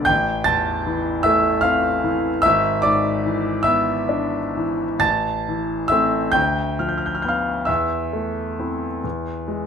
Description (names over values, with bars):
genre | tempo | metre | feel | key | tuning
classical, romantic nocturne for solo piano | 42-52 BPM (dotted quarters) | 12/8 | rubato | A minor | A4 = 439 Hz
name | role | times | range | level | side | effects
clear concert grand piano | solo | 0.0-9.7 s | G#1 to A6 | -18 LUFS | equal | none
room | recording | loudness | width
moderate large studio reverb, RT60 1.2 s | minimal, uncompressed stereo recording | -18 LUFS | side -7 dB against mid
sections
0.0-9.7 A section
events
none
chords
0.1 Am; 2.4 E7/G#; 5.0 Am; 6.4 Bdim/D; 7.7 Am/E; 9.0 E